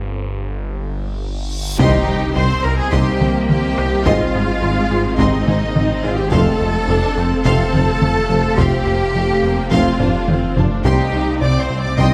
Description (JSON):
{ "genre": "cinematic, hybrid orchestral and electronic film score", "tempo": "106 BPM", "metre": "4/4", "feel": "straight", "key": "C minor", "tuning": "A4 = 440 Hz", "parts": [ { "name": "phased detuned saw bass", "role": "bass", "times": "0.0-12.1 s", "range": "F1 to C2", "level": "-26 LUFS", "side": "equal", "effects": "phaser" }, { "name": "reverse cymbal and impact", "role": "sound effects", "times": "1.4-4.1 s", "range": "none", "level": "-28 LUFS", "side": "equal", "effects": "none" }, { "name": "rich chamber violin section", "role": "melody", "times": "1.8-12.1 s", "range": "Eb5 to Eb6", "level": "-31 LUFS", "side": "equal", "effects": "none" }, { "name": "warm symphonic violin section", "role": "second line", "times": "1.8-12.1 s", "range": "G4 to C6", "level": "-28 LUFS", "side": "equal", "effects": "none" }, { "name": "rich symphonic viola section", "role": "accompaniment", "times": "1.8-12.1 s", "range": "G3 to Eb4", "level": "-28 LUFS", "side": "equal", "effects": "none" }, { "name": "dark French horn section", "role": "sustained chords", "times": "1.8-12.1 s", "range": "C4 to F4", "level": "-32 LUFS", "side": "equal", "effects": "none" }, { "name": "dark trombone section", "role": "sustained chords", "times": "1.8-12.1 s", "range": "C3 to A3", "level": "-31 LUFS", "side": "equal", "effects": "none" }, { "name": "ethereal airy pad", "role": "sustained chords", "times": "2.7-12.1 s", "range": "G3 to F5", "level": "-28 LUFS", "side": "equal", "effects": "ensemble chorus, built-in reverb" }, { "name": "plucky analog bass", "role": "riff", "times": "1.8-12.1 s", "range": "C2 to Ab2", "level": "-24 LUFS", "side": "equal", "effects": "none" }, { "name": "dark tuba", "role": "bass", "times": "1.8-12.1 s", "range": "F1 to C2", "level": "-26 LUFS", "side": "equal", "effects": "none" }, { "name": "rich studio double bass section", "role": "bass", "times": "1.8-12.1 s", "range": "F1 to C2", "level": "-27 LUFS", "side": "equal", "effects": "none" }, { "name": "rich symphonic cello section", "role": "bass", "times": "1.8-12.1 s", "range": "Eb4 to Eb5", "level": "-23 LUFS", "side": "equal", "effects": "none" }, { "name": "taiko ensemble", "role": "drums", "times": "1.8-12.1 s", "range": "none", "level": "-24 LUFS", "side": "equal", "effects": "none" } ], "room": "moderate scoring stage reverb, RT60 1.8 s", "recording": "none", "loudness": "-17 LUFS", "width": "mono", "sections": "0.0-1.8 A section; 1.8-12.1 B section", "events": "break 0.0-1.8; drum fill 0.9-1.8, 10.0-10.8; reverse cymbal 1.4-1.8; impact 1.8-4.1", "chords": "0.0 N.C.; 1.8 Cm; 4.1 Ab; 6.3 F; 10.8 Cm" }